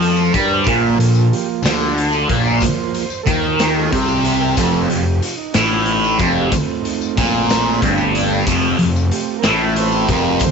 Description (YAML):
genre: psychedelic rock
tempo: 62 BPM (dotted quarters)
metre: 6/8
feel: straight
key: F mixolydian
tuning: A4 = 440 Hz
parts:
  - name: overdriven combo organ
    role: sustained chords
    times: 0.0-10.5 s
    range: F3 to D5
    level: -23 LUFS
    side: right 12 dB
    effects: lush chorus
  - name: thick fuzz guitar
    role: riff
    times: 0.0-10.4 s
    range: F2 to G3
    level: -15 LUFS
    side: equal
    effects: distortion, phaser
  - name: fuzz picked electric bass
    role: bass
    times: 0.0-10.4 s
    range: F1 to G2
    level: -22 LUFS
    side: left 1 dB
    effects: overdrive
  - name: raw garage drum kit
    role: drums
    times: 0.0-10.5 s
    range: hi-hat, kick drum, snare drum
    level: -22 LUFS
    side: left 1 dB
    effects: none
  - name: tambourine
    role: percussion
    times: 0.0-10.5 s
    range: none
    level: -34 LUFS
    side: left 17 dB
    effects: none
room: light reverb, small room ambience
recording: 1960s-style stereo with parts hard left and right, nothing above 7.9 kHz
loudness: -14 LUFS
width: side -5 dB against mid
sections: 0.0-10.5 A section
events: transistor combo organ solo 0.0-10.5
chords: 0.0 Bb5; 4.6 F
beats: | 0.67 1.64 | 2.62 3.59 | 4.57 5.54 | 6.52 7.49 | 8.47 9.45 | 10.42